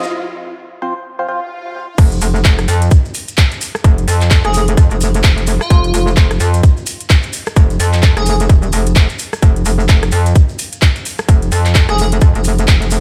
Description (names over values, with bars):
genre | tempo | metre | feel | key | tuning
bass house | 129 BPM | 4/4 | swing 59% on 16ths | unclear | A4 = 441 Hz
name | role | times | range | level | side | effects
dark analog pad | sustained chords | 0.1-13.0 s | F3 to F5 | -50 LUFS | equal | none
percussive organ stab | stabs | 0.0-1.4 s | F3 to C5 | -25 LUFS | equal | chorus, phaser, cassette tape, sidechain pumping, digital delay
maracas | percussion | 0.0-13.0 s | none | -30 LUFS | equal | none
riser and swell | sound effects | 0.0-2.0 s | none | -29 LUFS | equal | none
metallic wobble bass | bass | 2.0-13.0 s | Eb1 to F2 | -16 LUFS | equal | chorus, tube saturation, sidechain pumping, high-pass filter
electronic kick drum | drums | 2.0-12.8 s | none | -12 LUFS | equal | none
house drum kit | drums | 2.0-13.0 s | crash cymbal, handclaps, hi-hat, rim click | -22 LUFS | equal | none
airy dreamy lead | melody | 4.4-8.3, 11.9-12.1 s | F4 to Ab4 | -23 LUFS | equal | chorus, digital delay
room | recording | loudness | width
little or no reverb | high-pass filter | -13 LUFS | mono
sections
0.0-2.0 A section; 2.0-13.0 B section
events
build-up 0.0-2.0; filter sweep on synth stab 0.0-2.0; break 0.1-2.0; swell 1.2-2.0; drop 2.0-13.0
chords
0.0 F5